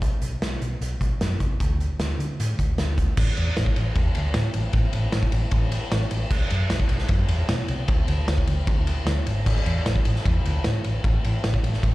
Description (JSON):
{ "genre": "indie rock", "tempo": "152 BPM", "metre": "4/4", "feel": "straight", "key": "A dorian", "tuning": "A4 = 439 Hz", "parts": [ { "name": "hollow-body short-scale picked electric bass", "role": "bass", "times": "0.0-11.9 s", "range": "G#1 to D3", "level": "-24 LUFS", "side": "equal", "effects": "none" }, { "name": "loose indie drum kit", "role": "drums", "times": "0.0-11.9 s", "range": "crash cymbal, hi-hat, kick drum, ride cymbal, snare drum", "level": "-24 LUFS", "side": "equal", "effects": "none" } ], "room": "little or no reverb", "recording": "live gig heard through the venue's PA, recital hall reverb", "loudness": "-21 LUFS", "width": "side -18 dB against mid", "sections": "0.0-3.2 A section; 3.2-11.9 B section", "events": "none", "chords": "none" }